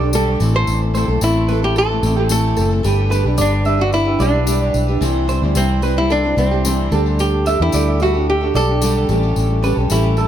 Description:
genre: acoustic pop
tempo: 110 BPM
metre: 4/4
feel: straight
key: unclear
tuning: A4 = 441 Hz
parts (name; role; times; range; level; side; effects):
- fingerpicked steel-string acoustic guitar; accompaniment; 0.0-10.3 s; A2 to C5; -20 LUFS; equal; dub echo
- electric guitar at the edge of break-up; arpeggios; 0.0-10.3 s; G4 to E5; -25 LUFS; right 5 dB; dub echo
- vintage muted fingered electric bass; bass; 0.0-10.3 s; F#1 to E2; -18 LUFS; equal; none
- nylon-string guitar; melody; 0.1-10.3 s; C4 to C5; -20 LUFS; equal; dub echo
- tambourine; percussion; 0.1-10.3 s; none; -30 LUFS; left 7 dB; dub echo
room: light reverb, studio ambience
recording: echo-heavy mix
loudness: -14 LUFS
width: side -10 dB against mid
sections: 0.0-10.3 A section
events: none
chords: 0.4 Am; 2.8 G; 5.0 C; 6.9 Dsus4; 9.1 A7

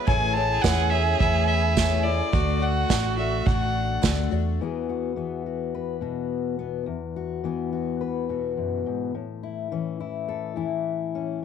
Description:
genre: indie folk with a building arrangement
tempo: 106 BPM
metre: 4/4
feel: straight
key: E mixolydian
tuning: A4 = 440 Hz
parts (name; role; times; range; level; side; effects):
- rich erhu; second line; 0.0-4.3 s; F#4 to G#4; -28 LUFS; right 15 dB; none
- picked twelve-string acoustic guitar; accompaniment; 0.0-4.6 s; A2 to F#4; -29 LUFS; left 14 dB; none
- warm fiddle; melody; 0.1-4.3 s; D5 to A5; -27 LUFS; left 2 dB; none
- hollow-body short-scale fingered electric bass; bass; 0.1-4.6 s; A1 to E2; -25 LUFS; right 1 dB; none
- unplugged drum kit; drums; 0.1-4.2 s; kick drum, snare drum; -24 LUFS; right 3 dB; none
- tambourine; percussion; 0.6-4.2 s; none; -37 LUFS; right 18 dB; none
- fingerpicked steel-string acoustic guitar; accompaniment; 4.6-11.4 s; E2 to B4; -27 LUFS; left 7 dB; none
room: little or no reverb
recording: 1960s-style stereo with parts hard left and right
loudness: -23 LUFS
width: side -8 dB against mid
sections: 0.0-4.6 A section; 4.6-11.4 B section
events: none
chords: 0.1 A; 2.3 D; 4.6 Eadd9; 9.1 A

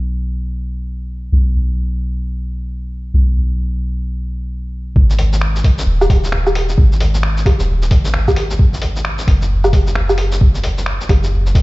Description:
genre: future garage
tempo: 132 BPM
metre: 4/4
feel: swing 62% on 16ths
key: G# minor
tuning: A4 = 438 Hz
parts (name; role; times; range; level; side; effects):
- soft 808-style bass; bass; 0.0-11.6 s; D#1 to B1; -16 LUFS; equal; sidechain pumping
- electronic kick drum; drums; 5.0-11.6 s; none; -11 LUFS; equal; small room ambience
- lo-fi sampler-style drum kit; drums; 5.1-11.6 s; finger snaps, hi-hat, shaker, woodblock; -20 LUFS; equal; small room ambience
room: little or no reverb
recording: played on a big sound system in a bare room, large studio reverb, nothing above 7.9 kHz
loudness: -13 LUFS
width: side -20 dB against mid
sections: 0.0-5.0 A section; 5.0-11.6 B section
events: none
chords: none

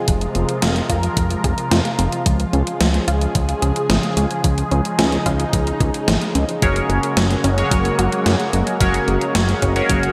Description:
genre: synthwave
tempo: 110 BPM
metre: 4/4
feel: straight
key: unclear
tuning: A4 = 441 Hz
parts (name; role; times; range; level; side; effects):
- lush unison pad; sustained chords; 0.0-10.1 s; C3 to Bb4; -25 LUFS; equal; chorus, phaser, sidechain pumping
- analog pluck; arpeggios; 0.1-10.0 s; F3 to Ab4; -28 LUFS; equal; chorus, delay
- fat analog bass; bass; 0.1-10.1 s; F1 to Gb2; -22 LUFS; equal; sidechain pumping
- electronic kick drum; drums; 0.1-10.0 s; none; -23 LUFS; equal; overdrive
- gated 80s digital drum machine; drums; 0.1-10.1 s; hi-hat, snare drum; -25 LUFS; equal; gated reverb, gated reverb snare, overdrive
- chorused polysynth; stabs; 6.6-10.1 s; Db4 to Db5; -23 LUFS; equal; phaser, delay
room: moderate lush hall reverb, RT60 1.8 s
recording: bright 1980s-style digital production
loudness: -18 LUFS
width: mono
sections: 0.0-10.1 A section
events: none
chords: 0.0 Fm; 2.3 Db; 6.6 Gbadd9

